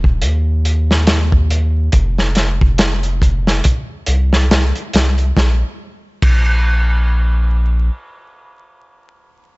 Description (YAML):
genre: trip hop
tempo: 70 BPM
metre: 4/4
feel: swing 58% on 16ths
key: unclear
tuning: A4 = 441 Hz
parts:
  - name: soft dub sub bass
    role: bass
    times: 0.0-7.9 s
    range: Eb1 to Eb2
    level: -14 LUFS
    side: equal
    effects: none
  - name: crunchy breakbeat drum kit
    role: drums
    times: 0.0-6.5 s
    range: crash cymbal, hi-hat, kick drum, snare drum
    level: -16 LUFS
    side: equal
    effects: none
room: little or no reverb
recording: vinyl crackle, nothing above 7.9 kHz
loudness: -13 LUFS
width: side -25 dB against mid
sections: 0.0-5.4 A section; 5.4-8.8 B section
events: none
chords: none